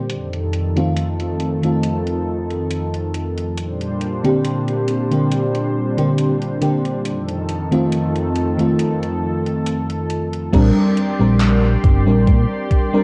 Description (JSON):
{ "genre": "vaporwave", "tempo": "69 BPM", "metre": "4/4", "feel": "swing 54% on 16ths", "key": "Bb major", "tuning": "A4 = 440 Hz", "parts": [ { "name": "lush unison pad", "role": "sustained chords", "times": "0.0-13.0 s", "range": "F2 to C6", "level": "-25 LUFS", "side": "equal", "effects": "chorus" }, { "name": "gated 80s digital drum machine", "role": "drums", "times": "0.1-12.9 s", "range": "crash cymbal, handclaps, hi-hat", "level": "-34 LUFS", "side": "equal", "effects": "gated reverb, overdrive, low-pass filter on hats, low-pass filter on cymbals, low-pass filter on snare, low-pass filter on room" }, { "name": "FM electric piano with soft pad layer", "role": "accompaniment", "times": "0.8-13.0 s", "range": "D3 to Bb4", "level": "-21 LUFS", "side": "equal", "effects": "tremolo, lush chorus, tape echo" }, { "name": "chorused synth bass", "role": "bass", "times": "10.5-12.5 s", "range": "G1 to Bb2", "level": "-18 LUFS", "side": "equal", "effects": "none" }, { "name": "electronic kick drum", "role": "drums", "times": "10.5-12.9 s", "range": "none", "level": "-17 LUFS", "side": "equal", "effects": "overdrive" } ], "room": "moderate lush hall reverb, RT60 2.6 s", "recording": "dark, warm production, cassette tape", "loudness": "-19 LUFS", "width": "mono", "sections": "0.0-10.5 A section; 10.5-13.0 B section", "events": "filter sweep on analog synth pad 0.0-10.5", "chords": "0.1 F7; 3.6 Bb69; 7.1 F7; 10.5 Bb69", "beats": "| 0.10 0.97 1.84 2.71 | 3.58 4.45 5.32 6.18 | 7.05 7.92 8.79 9.66 | 10.53 11.40 12.27" }